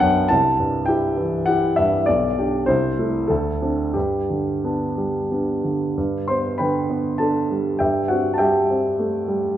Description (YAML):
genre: classical, romantic character piece for solo piano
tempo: 88-105 BPM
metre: 3/4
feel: rubato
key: G major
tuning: A4 = 442 Hz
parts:
  - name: warm grand piano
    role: solo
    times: 0.0-9.6 s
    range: B1 to C6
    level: -18 LUFS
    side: equal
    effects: none
room: wet recital hall reverb, RT60 1.4 s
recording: none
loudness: -18 LUFS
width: side -11 dB against mid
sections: 0.0-6.0 A section; 6.0-9.6 B section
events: none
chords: 0.3 C; 2.1 G/B; 2.7 Am/C; 3.3 D5; 4.0 G; 7.8 Am7/G